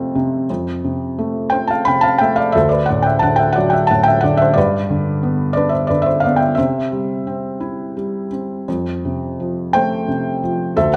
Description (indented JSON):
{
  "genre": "classical, lyrical solo piano",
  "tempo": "59 BPM (dotted quarters)",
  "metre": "6/8",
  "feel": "rubato",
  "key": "F lydian",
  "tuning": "A4 = 443 Hz",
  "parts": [
    { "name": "felt-muted upright piano", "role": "solo", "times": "0.0-11.0 s", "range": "D2 to B5", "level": "-17 LUFS", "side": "equal", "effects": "none" }
  ],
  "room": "moderate recital hall reverb, RT60 1.4 s",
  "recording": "none",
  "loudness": "-17 LUFS",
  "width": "mono",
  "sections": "0.5-11.0 A section",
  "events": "none",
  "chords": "0.5 Fadd9; 2.6 Dadd9; 4.6 G; 6.6 C; 8.7 Fadd9"
}